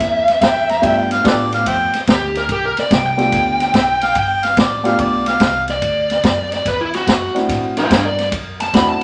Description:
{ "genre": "electric blues shuffle", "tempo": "144 BPM", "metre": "4/4", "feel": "swing 66% on 8ths", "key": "G mixolydian", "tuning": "A4 = 441 Hz", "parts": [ { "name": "smooth overdriven lead guitar", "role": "melody", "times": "0.0-9.0 s", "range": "D4 to B5", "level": "-19 LUFS", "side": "equal", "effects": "none" }, { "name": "dark upright piano", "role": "accompaniment", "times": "0.0-9.0 s", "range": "A3 to G4", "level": "-22 LUFS", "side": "equal", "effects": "none" }, { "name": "upright bass", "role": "bass", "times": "0.0-9.0 s", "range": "G1 to A2", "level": "-30 LUFS", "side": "equal", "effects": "none" }, { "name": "vintage drum kit", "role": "drums", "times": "0.0-9.0 s", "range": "kick drum, ride cymbal, snare drum", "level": "-21 LUFS", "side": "equal", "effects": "none" }, { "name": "clear harmonica", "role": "second line", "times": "0.4-5.6 s", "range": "A4 to Bb5", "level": "-20 LUFS", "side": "equal", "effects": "overdrive" } ], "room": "moderate studio reverb, RT60 0.9 s", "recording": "vinyl crackle, nothing above 10.4 kHz", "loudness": "-16 LUFS", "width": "mono", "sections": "0.0-9.0 A section", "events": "none", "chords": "0.0 C9; 0.8 G9; 5.8 D9", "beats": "0.41 | 0.82 1.24 1.66 2.07 | 2.49 2.90 3.32 3.74 | 4.15 4.57 4.99 5.40 | 5.82 6.23 6.65 7.07 | 7.48 7.90 8.32 8.73" }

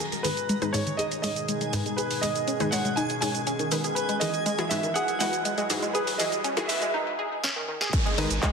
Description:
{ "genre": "progressive house", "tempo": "121 BPM", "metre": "4/4", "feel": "straight", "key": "G# minor", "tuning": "A4 = 440 Hz", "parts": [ { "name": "clear baby grand piano", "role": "melody", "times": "0.0-6.9 s", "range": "B4 to G#5", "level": "-30 LUFS", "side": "right 1 dB", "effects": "ping-pong delay" }, { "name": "evolving wavetable pad", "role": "sustained chords", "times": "0.0-8.5 s", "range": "B2 to G#4", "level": "-36 LUFS", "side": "equal", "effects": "chorus, built-in reverb, sidechain pumping" }, { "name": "house drum kit", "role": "drums", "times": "0.0-8.5 s", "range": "crash cymbal, handclaps, hi-hat, shaker, snare drum", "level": "-31 LUFS", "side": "right 1 dB", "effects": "none" }, { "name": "riser and downlifter", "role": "sound effects", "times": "0.0-8.5 s", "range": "none", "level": "-39 LUFS", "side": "right 1 dB", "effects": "none" }, { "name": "backwards swelling texture", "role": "texture", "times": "0.0-6.9 s", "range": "G#5", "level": "-39 LUFS", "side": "equal", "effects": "built-in reverb, sidechain pumping" }, { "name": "wide unison pluck", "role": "arpeggios", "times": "0.1-8.5 s", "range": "G#2 to G#4", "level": "-30 LUFS", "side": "equal", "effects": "sidechain pumping, ping-pong delay" }, { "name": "wide unison pluck", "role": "stabs", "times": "0.2-8.2 s", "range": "E3 to C#5", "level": "-32 LUFS", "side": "left 2 dB", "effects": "sidechain pumping, ping-pong delay" }, { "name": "electronic kick drum", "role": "drums", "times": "7.9-8.5 s", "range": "none", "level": "-24 LUFS", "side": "equal", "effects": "none" }, { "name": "saturated sub bass", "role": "bass", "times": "8.2-8.4 s", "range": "G#1", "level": "-30 LUFS", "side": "equal", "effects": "sidechain pumping" } ], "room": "wet lush hall reverb, RT60 1.7 s", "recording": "dense, heavily limited modern master, high-pass filter", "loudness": "-24 LUFS", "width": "side -5 dB against mid", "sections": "0.0-7.9 A section", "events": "build-up 0.0-7.9; filter sweep on synth pluck 0.0-7.9; break 6.9-7.9; drum fill 7.4-7.9", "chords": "0.0 G#m; 4.0 Eadd9; 7.9 G#m", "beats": "| 0.00 0.49 0.99 1.49 | 1.98 2.48 2.97 3.47 | 3.96 4.46 4.96 5.45 | 5.95 6.44 6.94 7.44 | 7.93 8.43" }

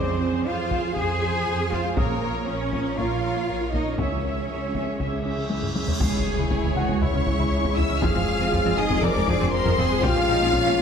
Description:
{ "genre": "cinematic, hybrid orchestral and electronic film score", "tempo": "119 BPM", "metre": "4/4", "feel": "straight", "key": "unclear", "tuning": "A4 = 440 Hz", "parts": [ { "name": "warm symphonic violin section", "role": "second line", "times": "0.0-10.8 s", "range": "G#4 to Ab5", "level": "-30 LUFS", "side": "left 2 dB", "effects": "none" }, { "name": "warm symphonic viola section", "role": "accompaniment", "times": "0.0-10.8 s", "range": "F3 to E5", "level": "-32 LUFS", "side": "equal", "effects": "none" }, { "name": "evolving wavetable pad", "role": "sustained chords", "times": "0.0-10.8 s", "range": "F3 to C#5", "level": "-32 LUFS", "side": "equal", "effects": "chorus, built-in reverb" }, { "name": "tight sequenced synth", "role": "arpeggios", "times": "0.0-10.8 s", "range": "C#3 to A#4", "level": "-36 LUFS", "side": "equal", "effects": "none" }, { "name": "rich symphonic double bass section", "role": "bass", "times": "0.0-10.8 s", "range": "A#1 to F2", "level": "-29 LUFS", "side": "right 4 dB", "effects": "none" }, { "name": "warm symphonic cello section", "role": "bass", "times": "0.0-10.8 s", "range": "A#3 to A#4", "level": "-29 LUFS", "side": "right 2 dB", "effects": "none" }, { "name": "felt-muted upright piano", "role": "texture", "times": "0.0-10.8 s", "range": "G4 to D#6", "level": "-37 LUFS", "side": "left 3 dB", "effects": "ping-pong delay" }, { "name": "taiko ensemble", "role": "drums", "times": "0.7-10.8 s", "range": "none", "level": "-30 LUFS", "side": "left 1 dB", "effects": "none" }, { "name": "cymbal swell and impact", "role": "sound effects", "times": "5.3-8.0 s", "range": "none", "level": "-32 LUFS", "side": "left 1 dB", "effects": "none" }, { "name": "rich symphonic violin section", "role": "melody", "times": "6.0-10.8 s", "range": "G#5 to F6", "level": "-30 LUFS", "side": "left 6 dB", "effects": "none" }, { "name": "clear trombone section", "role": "sustained chords", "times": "6.0-10.8 s", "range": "E3 to C#4", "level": "-33 LUFS", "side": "right 2 dB", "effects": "none" }, { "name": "mellow French horn section", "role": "sustained chords", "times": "6.0-10.8 s", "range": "G#3 to F4", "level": "-29 LUFS", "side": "left 4 dB", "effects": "none" }, { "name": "round analog bass", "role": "riff", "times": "6.0-10.8 s", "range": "C#2 to A#3", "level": "-30 LUFS", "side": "left 3 dB", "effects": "none" }, { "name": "pure sine sub bass", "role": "bass", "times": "6.0-10.8 s", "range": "F1 to C#2", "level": "-31 LUFS", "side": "left 1 dB", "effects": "none" } ], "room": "wet scoring stage reverb, RT60 1.7 s", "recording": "none", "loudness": "-21 LUFS", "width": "side -7 dB against mid", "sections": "0.0-6.0 A section; 6.0-10.8 B section", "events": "cymbal swell 5.3-6.0; drum fill 5.5-6.0; impact 6.0-8.0", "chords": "0.0 Fm; 2.0 A#m; 4.0 C#m; 8.0 Fm; 10.0 A#m", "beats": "0.46 0.96 1.47 | 1.97 2.48 2.98 3.48 | 3.99 4.49 5.00 5.50 | 6.00 6.51 7.01 7.52 | 8.02 8.53 9.03 9.53 | 10.04 10.54" }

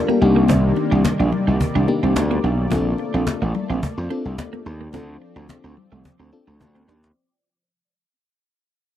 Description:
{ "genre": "early-eighties boogie funk", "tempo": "108 BPM", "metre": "4/4", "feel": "straight", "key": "unclear", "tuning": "A4 = 439 Hz", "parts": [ { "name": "FM electric piano with tremolo", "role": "accompaniment", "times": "0.0-6.8 s", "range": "Bb3 to Bb4", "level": "-22 LUFS", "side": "left 4 dB", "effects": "none" }, { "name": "warm analog pad", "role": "sustained chords", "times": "0.0-7.1 s", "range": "C3 to D5", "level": "-26 LUFS", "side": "equal", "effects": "chorus" }, { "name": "clean electric guitar", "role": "riff", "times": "0.1-7.0 s", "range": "A3 to Eb4", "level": "-25 LUFS", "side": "right 6 dB", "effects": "analog chorus" }, { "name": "cajon", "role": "drums", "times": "0.1-7.2 s", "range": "none", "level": "-24 LUFS", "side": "equal", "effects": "none" }, { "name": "congas", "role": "percussion", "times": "0.1-6.9 s", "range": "none", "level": "-29 LUFS", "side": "left 8 dB", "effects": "none" }, { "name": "gritty slap bass", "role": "bass", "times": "0.2-7.1 s", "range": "A1 to F2", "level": "-20 LUFS", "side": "equal", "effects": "overdrive" } ], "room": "little or no reverb", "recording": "dry, close 1970s-style studio recording, lossy compression artefacts", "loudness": "-17 LUFS", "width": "side -11 dB against mid", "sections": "0.0-7.2 A section", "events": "fade-out 0.0-7.2; drum fill 6.6-7.2", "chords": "0.2 Cm9; 2.7 Bbmaj9; 4.9 Dm7", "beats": "| 0.49 1.05 1.60 2.16 | 2.72 3.27 3.83 4.38 | 4.94 5.49 6.05 6.61" }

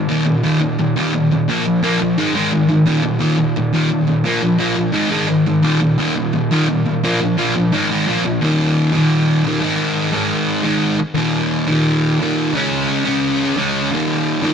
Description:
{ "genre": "punk", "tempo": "173 BPM", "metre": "4/4", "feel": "straight", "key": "unclear", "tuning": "A4 = 439 Hz", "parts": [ { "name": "sludgy distorted guitar", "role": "solo", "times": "0.0-14.5 s", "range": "Eb2 to Db4", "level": "-14 LUFS", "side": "equal", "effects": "overdrive, tape echo" } ], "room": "light reverb", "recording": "rough rehearsal-room recording", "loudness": "-14 LUFS", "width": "side -7 dB against mid", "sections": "0.0-8.4 A section; 8.4-14.5 B section", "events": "none", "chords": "0.1 Eb5; 1.5 Bb5; 2.2 Ab5; 2.9 Eb5; 4.3 Bb5; 4.9 Ab5; 5.6 Eb5; 7.0 Bb5; 7.7 Ab5; 8.1 Bb5; 8.4 Eb5; 9.6 Ab5; 11.2 Eb5; 12.5 Db5; 13.9 Eb5", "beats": "| 0.08 0.43 0.78 1.13 | 1.47 1.82 2.17 2.52 | 2.86 3.21 3.56 3.90 | 4.25 4.60 4.95 5.29 | 5.64 5.99 6.33 6.68 | 7.03 7.38 7.72 8.07 | 8.41 8.76 9.11 9.45 | 9.79 10.14 10.48 10.83 | 11.17 11.51 11.86 12.20 | 12.54 12.88 13.23 13.57 | 13.91 14.26" }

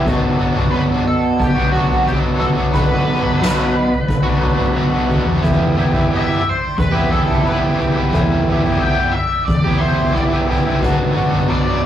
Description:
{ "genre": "psychedelic rock", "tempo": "89 BPM", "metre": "4/4", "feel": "straight", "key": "E minor", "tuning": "A4 = 440 Hz", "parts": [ { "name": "bright tonewheel organ", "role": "sustained chords", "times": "0.0-11.9 s", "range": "B4 to B5", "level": "-30 LUFS", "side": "right 1 dB", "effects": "slow rotary speaker, chorus vibrato" }, { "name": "raw garage guitar", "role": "riff", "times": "0.0-11.9 s", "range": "B2 to G4", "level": "-18 LUFS", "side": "equal", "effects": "overdrive, harmonic tremolo" }, { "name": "fingered electric bass", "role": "bass", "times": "0.1-11.9 s", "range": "B1 to E2", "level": "-24 LUFS", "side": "equal", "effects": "none" }, { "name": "soft-mallet drum kit", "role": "drums", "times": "0.1-11.7 s", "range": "kick drum, snare drum, toms", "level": "-18 LUFS", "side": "equal", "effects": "none" }, { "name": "octave-fuzz lead guitar", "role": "melody", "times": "0.7-11.8 s", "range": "F#4 to G5", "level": "-21 LUFS", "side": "equal", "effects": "wah, distortion" } ], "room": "moderate studio reverb, RT60 0.7 s", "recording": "rough rehearsal-room recording", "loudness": "-14 LUFS", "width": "side -11 dB against mid", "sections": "0.0-11.9 A section", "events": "none", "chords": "0.1 Bm7; 5.4 Em7; 10.8 Bm7", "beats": "| 0.06 0.73 1.40 2.07 | 2.74 3.41 4.08 4.75 | 5.43 6.10 6.78 7.45 | 8.12 8.80 9.47 10.15 | 10.83 11.50" }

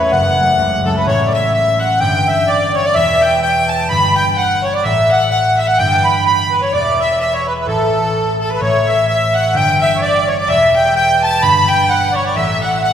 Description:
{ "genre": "celtic folk, Celtic polka", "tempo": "128 BPM", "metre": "2/4", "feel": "swing 56% on 8ths", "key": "A mixolydian", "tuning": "A4 = 441 Hz", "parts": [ { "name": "accordion", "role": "melody", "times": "0.0-12.9 s", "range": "A4 to B5", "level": "-14 LUFS", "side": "right 1 dB", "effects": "light tremolo tuning" }, { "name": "clear fiddle", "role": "second line", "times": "0.0-12.9 s", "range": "A4 to B5", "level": "-19 LUFS", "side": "left 2 dB", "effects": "none" }, { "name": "concert harp", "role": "accompaniment", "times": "0.0-12.9 s", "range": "E1 to E4", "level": "-18 LUFS", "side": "left 1 dB", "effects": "none" } ], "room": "wet concert hall reverb, RT60 2.3 s", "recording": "recorded in a church or concert hall", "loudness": "-12 LUFS", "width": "side -9 dB against mid", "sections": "0.0-1.1 A section; 1.1-8.6 B section; 8.6-12.9 B section", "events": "none", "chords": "0.1 F#m; 1.1 N.C.", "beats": "| 0.12 0.59 | 1.06 1.54 | 2.01 2.48 | 2.96 3.43 | 3.90 4.37 | 4.84 5.31 | 5.78 6.25 | 6.72 7.20 | 7.67 8.13 | 8.60 9.07 | 9.54 10.01 | 10.48 10.95 | 11.42 11.89 | 12.36 12.83" }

